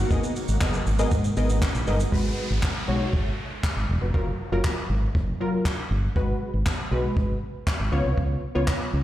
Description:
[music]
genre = dance-pop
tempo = 119 BPM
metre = 4/4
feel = straight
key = G# dorian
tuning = A4 = 439 Hz
[part]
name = shimmering ambient pad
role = sustained chords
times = 0.0-2.1 s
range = B2 to D#4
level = -34 LUFS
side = equal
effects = chorus, built-in reverb, phaser, sidechain pumping
[part]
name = fingered electric bass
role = bass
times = 0.0-9.0 s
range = E1 to G#2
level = -25 LUFS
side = equal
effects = sidechain pumping
[part]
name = funky polysynth comp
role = accompaniment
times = 0.1-9.0 s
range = F#3 to D#5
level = -29 LUFS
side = left 1 dB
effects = chorus, sidechain pumping
[part]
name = jazz brush drum kit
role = drums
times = 0.1-8.8 s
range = handclaps, hi-hat, kick drum, shaker, snare drum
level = -27 LUFS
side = equal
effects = none
[part]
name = downlifter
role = sound effects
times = 2.1-6.2 s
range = none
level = -37 LUFS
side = equal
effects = none
[sound]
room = light reverb, small room ambience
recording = played on a big sound system in a bare room, stone room reverb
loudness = -22 LUFS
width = side -13 dB against mid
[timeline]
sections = 0.0-2.1 A section; 2.1-9.0 B section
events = none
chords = 0.1 G#madd9; 2.1 G#m7; 4.1 F#maj7; 6.2 G#m7; 7.9 C#7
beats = | 0.11 0.61 1.11 1.62 | 2.12 2.63 3.13 3.64 | 4.14 4.64 5.15 5.65 | 6.16 6.66 7.17 7.67 | 8.17 8.68

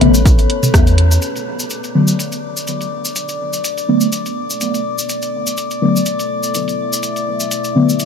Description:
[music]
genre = dub techno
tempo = 124 BPM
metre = 4/4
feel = swing 55% on 16ths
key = B minor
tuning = A4 = 440 Hz
[part]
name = deep dark ambient pad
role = sustained chords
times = 0.0-8.1 s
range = B3 to E5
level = -26 LUFS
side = left 3 dB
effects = chorus, built-in reverb, sidechain pumping
[part]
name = deep mellow chord stab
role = stabs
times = 0.0-7.9 s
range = D3 to B3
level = -18 LUFS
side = left 2 dB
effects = chorus, phaser, sidechain pumping, dub echo
[part]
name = soft dub sub bass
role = bass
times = 0.0-1.2 s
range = A1 to E2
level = -13 LUFS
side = equal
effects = sidechain pumping
[part]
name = punchy analog drum machine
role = drums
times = 0.0-8.1 s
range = hi-hat, rim click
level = -25 LUFS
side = right 1 dB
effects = low-pass filter on hats, low-pass filter on snare, dub echo
[part]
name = electronic toms and woodblock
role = percussion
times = 0.0-0.8 s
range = none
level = -21 LUFS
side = right 2 dB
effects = sidechain pumping on perc, sidechain pumping on toms
[part]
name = drifting glass-harmonics texture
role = texture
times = 0.0-8.1 s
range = B4 to D5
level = -23 LUFS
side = left 2 dB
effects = chorus, built-in reverb, sidechain pumping
[part]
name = cabasa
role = percussion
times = 0.1-8.1 s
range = none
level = -23 LUFS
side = left 2 dB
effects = none
[part]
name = electronic kick drum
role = drums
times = 0.3-0.8 s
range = none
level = -12 LUFS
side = equal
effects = none
[sound]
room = light reverb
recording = none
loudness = -14 LUFS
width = side -6 dB against mid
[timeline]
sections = 0.0-1.2 A section; 1.2-8.1 B section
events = filter sweep on synth stab 0.0-1.2; band accent 0.7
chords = 0.0 Bm7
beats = 0.25 0.74 | 1.22 1.71 2.19 2.67 | 3.16 3.64 4.12 4.61 | 5.09 5.58 6.06 6.54 | 7.03 7.51 8.00

